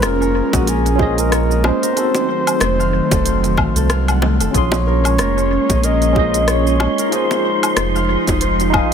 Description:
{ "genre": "sunset chillout", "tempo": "93 BPM", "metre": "4/4", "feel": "swing 57% on 16ths", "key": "Bb minor", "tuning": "A4 = 440 Hz", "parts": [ { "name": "breathy flugelhorn", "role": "melody", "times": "0.0-8.1 s", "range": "Gb4 to Eb5", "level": "-22 LUFS", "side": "equal", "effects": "dub echo" }, { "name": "bright tine electric piano", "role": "accompaniment", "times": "0.0-8.9 s", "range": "C4 to C6", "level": "-22 LUFS", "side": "right 1 dB", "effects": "medium stereo tremolo, auto-pan, dub echo" }, { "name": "airy breathy pad", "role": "sustained chords", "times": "0.0-8.9 s", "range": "Eb3 to Eb4", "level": "-21 LUFS", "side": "equal", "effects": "chorus" }, { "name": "concert harp", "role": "arpeggios", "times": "0.0-8.9 s", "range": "Ab4 to Gb5", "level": "-26 LUFS", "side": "left 3 dB", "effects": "dub echo" }, { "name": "round analog bass", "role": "bass", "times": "0.0-8.8 s", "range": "F1 to C2", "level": "-18 LUFS", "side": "equal", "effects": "tube saturation" }, { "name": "deep house drum kit", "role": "drums", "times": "0.0-8.9 s", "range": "hi-hat, rim click, shaker, woodblock", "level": "-22 LUFS", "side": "left 1 dB", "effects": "analog delay" }, { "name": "bongos", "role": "percussion", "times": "0.0-8.9 s", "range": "none", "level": "-25 LUFS", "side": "left 1 dB", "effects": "analog delay" }, { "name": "electronic kick drum", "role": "drums", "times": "0.5-8.9 s", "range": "none", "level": "-22 LUFS", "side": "equal", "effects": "none" }, { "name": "wind-like tuned noise texture", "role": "texture", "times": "5.0-8.9 s", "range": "C6", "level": "-26 LUFS", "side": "equal", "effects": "built-in reverb" } ], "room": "light reverb, digital ambience", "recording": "echo-heavy mix", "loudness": "-14 LUFS", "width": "side -7 dB against mid", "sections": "0.0-8.9 A section", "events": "none", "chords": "0.0 Bbm9; 2.0 F7b9; 4.5 Bbm9; 7.1 Fm7" }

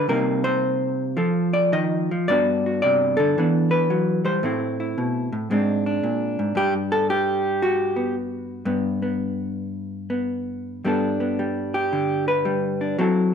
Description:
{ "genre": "solo jazz", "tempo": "112 BPM", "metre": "4/4", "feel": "swing 67% on 8ths, rubato", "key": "G major", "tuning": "A4 = 439 Hz", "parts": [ { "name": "vintage hollow-body jazz guitar", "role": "solo", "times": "0.0-13.3 s", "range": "G2 to Eb5", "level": "-20 LUFS", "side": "equal", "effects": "none" } ], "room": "moderate large studio reverb, RT60 1.2 s", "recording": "dark, warm production", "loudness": "-20 LUFS", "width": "side -7 dB against mid", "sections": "0.0-10.9 A section; 10.9-13.3 B section", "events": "hollow-body jazz guitar solo 10.9-13.3", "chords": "0.1 Cm7; 1.2 F7; 2.3 Gmaj7; 3.4 Em7; 4.4 Am; 5.5 Ab; 6.6 Gmaj7; 10.9 Gadd9" }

